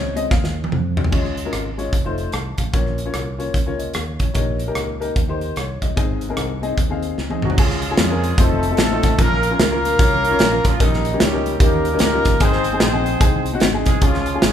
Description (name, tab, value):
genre	uptempo gospel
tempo	149 BPM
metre	4/4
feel	swing 62% on 8ths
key	Db major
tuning	A4 = 440 Hz
part	warm upright piano	accompaniment	0.0-14.5 s	Ab2 to A5	-23 LUFS	left 4 dB	none
part	modern bright fingered electric bass	bass	0.0-14.5 s	F1 to F2	-25 LUFS	right 1 dB	none
part	modern studio drum kit	drums	0.2-14.5 s	crash cymbal, hi-hat, kick drum, rim click, snare drum, toms	-19 LUFS	equal	none
part	warm horn section	melody	7.5-14.5 s	Eb3 to C5	-21 LUFS	equal	none
room	moderate large studio reverb, RT60 1.5 s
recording	band playing live in one room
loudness	-16 LUFS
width	side -9 dB against mid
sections	0.0-1.1 A section; 1.1-7.6 B section; 7.6-14.5 C section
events	upright piano solo 0.0-1.1; drum fill 0.3-1.1, 7.2-7.6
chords	0.0 Bbm7 (rootless); 1.1 Db; 1.9 F7; 2.7 Bbm; 4.4 Eb7/Bb; 6.0 Ab; 7.6 Db; 8.4 F7; 9.2 Bbm; 10.8 Eb7/Bb; 12.4 Ab; 14.0 Db